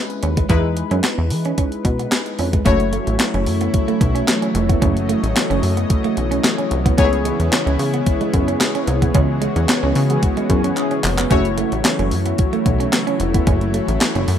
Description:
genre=early-eighties boogie funk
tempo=111 BPM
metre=4/4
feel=straight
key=F# dorian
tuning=A4 = 441 Hz
part: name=funky polysynth comp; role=accompaniment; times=0.0-14.4 s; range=G#3 to C#5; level=-23 LUFS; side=left 4 dB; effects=chorus
part: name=clean 12-bit digital drum machine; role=drums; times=0.1-14.4 s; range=handclaps, hi-hat, kick drum, snare drum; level=-19 LUFS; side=equal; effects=overdrive
part: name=clean electric guitar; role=riff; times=0.2-14.3 s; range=G#3 to E4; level=-25 LUFS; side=right 8 dB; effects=wide subtle chorus
part: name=plucky analog bass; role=bass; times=0.2-14.4 s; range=E#1 to E3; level=-20 LUFS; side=equal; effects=none
part: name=lush unison pad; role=sustained chords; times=2.7-14.4 s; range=C#3 to D#5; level=-23 LUFS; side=equal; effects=chorus
part: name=mellow synth brass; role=second line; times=10.1-11.0 s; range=E3 to G#4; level=-24 LUFS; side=left 2 dB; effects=chorus
room=light reverb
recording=rough home demo mix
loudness=-15 LUFS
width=side -9 dB against mid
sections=0.0-2.7 A section; 2.7-14.4 B section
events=band accent 9.1-11.3; drum fill 10.8-11.3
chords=0.5 Emaj7; 2.7 F#m7; 7.0 C#m7; 11.3 F#m7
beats=| 0.50 1.04 1.58 2.12 | 2.66 3.20 3.74 4.28 | 4.82 5.36 5.90 6.44 | 6.98 7.52 8.06 8.61 | 9.14 9.69 10.23 10.77 | 11.31 11.85 12.39 12.93 | 13.47 14.01

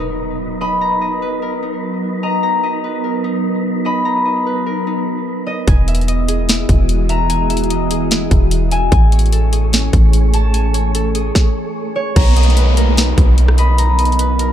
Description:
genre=hip hop, atmospheric cloud-rap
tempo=148 BPM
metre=4/4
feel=half-time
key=B major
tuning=A4 = 440 Hz
part: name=concert harp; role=melody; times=0.0-14.5 s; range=C#5 to B5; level=-22 LUFS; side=left 2 dB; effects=tape echo
part: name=glassy FM pad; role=sustained chords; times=0.0-14.5 s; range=E3 to G#4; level=-22 LUFS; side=right 1 dB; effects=ensemble chorus, built-in reverb, sidechain pumping
part: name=Celtic harp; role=arpeggios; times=0.0-14.5 s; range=C#4 to A#5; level=-25 LUFS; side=left 3 dB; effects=tape echo
part: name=impact and downlifter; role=sound effects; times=0.0-0.8, 12.2-14.5 s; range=none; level=-23 LUFS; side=right 1 dB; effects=none
part: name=wind-like tuned noise texture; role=texture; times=0.0-14.5 s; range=G#3 to D#5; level=-25 LUFS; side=right 1 dB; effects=built-in reverb
part: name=soft 808-style bass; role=bass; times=5.7-14.5 s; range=E1 to B1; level=-14 LUFS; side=equal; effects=none
part: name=trap drum kit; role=drums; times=5.7-14.5 s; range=crash cymbal, hi-hat, kick drum, rim click, snare drum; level=-16 LUFS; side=equal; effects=none
room=digital ambience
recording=dark, warm production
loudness=-13 LUFS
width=side -10 dB against mid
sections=0.0-12.2 A section; 12.2-14.5 B section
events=impact 0.0-0.8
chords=0.0 Bmaj7; 5.7 Emaj7; 8.9 Amaj7; 12.2 Bmaj7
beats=0.00 0.41 | 0.81 1.22 1.62 2.03 | 2.43 2.84 3.24 3.65 | 4.05 4.46 4.87 5.27 | 5.67 6.08 6.49 6.89 | 7.30 7.70 8.11 8.51 | 8.92 9.32 9.73 10.13 | 10.54 10.95 11.35 11.76 | 12.16 12.57 12.97 13.38 | 13.78 14.19

